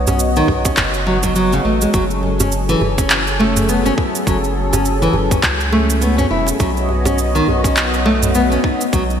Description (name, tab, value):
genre	organic downtempo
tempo	103 BPM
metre	4/4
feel	swing 58% on 16ths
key	F# dorian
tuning	A4 = 440 Hz
part	warm analog pad	sustained chords	0.0-9.2 s	F#3 to D#5	-21 LUFS	left 1 dB	chorus, sidechain pumping
part	warm sub bass	bass	0.0-9.2 s	E1 to C#2	-20 LUFS	equal	none
part	nylon-string guitar	arpeggios	0.1-9.0 s	C#3 to E4	-18 LUFS	equal	ping-pong delay
part	deep house drum kit	drums	0.1-9.2 s	handclaps, shaker, toms	-21 LUFS	right 1 dB	gated reverb
part	djembe	percussion	0.1-8.8 s	none	-25 LUFS	right 2 dB	none
part	electronic kick drum	drums	0.5-9.1 s	none	-19 LUFS	equal	none
room	moderate lush hall reverb, RT60 3.2 s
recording	bright 1980s-style digital production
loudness	-13 LUFS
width	side -8 dB against mid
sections	0.0-9.2 A section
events	none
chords	0.0 B; 1.9 F#madd9; 6.6 B